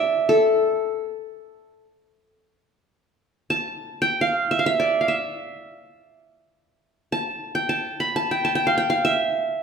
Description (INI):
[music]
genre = Turkish makam ensemble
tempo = free time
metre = none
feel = none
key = unclear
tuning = A4 = 440 Hz
[part]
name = qanun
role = solo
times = 0.0-9.6 s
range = A4 to B5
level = -20 LUFS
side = equal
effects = none
[sound]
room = wet recital hall reverb, RT60 1.6 s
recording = minimal, uncompressed stereo recording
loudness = -20 LUFS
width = side -6 dB against mid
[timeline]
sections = 0.0-3.2 A section; 3.2-9.6 A section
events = none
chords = none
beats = free time